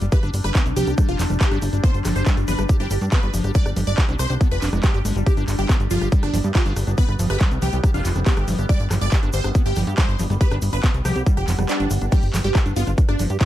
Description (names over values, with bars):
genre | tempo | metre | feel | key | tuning
psychedelic trance | 140 BPM | 4/4 | straight | G major | A4 = 440 Hz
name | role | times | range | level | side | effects
overtone-sweeping drone | sustained chords | 0.0-13.4 s | G3 to D4 | -31 LUFS | left 2 dB | chorus, built-in reverb, sidechain pumping
liquid acid bass | riff | 0.0-13.4 s | F3 to G4 | -29 LUFS | moving between left 3 dB and right 4 dB | chorus, auto-pan, cassette tape, sidechain pumping, tape echo
plucky analog bass | bass | 0.0-13.4 s | F1 to G2 | -22 LUFS | equal | none
big-room dance drum kit | drums | 0.0-13.4 s | crash cymbal, handclaps, hi-hat, rim click | -30 LUFS | equal | small room reverb
tube shaker | percussion | 0.0-13.4 s | none | -38 LUFS | left 2 dB | none
impact and swell | sound effects | 0.0-0.1, 11.5-12.1 s | none | -34 LUFS | left 3 dB | none
supersaw stab | melody | 0.1-13.4 s | D4 to D5 | -28 LUFS | right 1 dB | phaser, sidechain pumping, tape echo
electronic kick drum | drums | 0.1-13.4 s | none | -18 LUFS | equal | small room reverb
room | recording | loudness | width
little or no reverb | dark, warm production | -17 LUFS | side -13 dB against mid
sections
0.0-13.4 A section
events
swell 11.5-12.1; kick drops out 11.7-12.1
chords
0.0 G5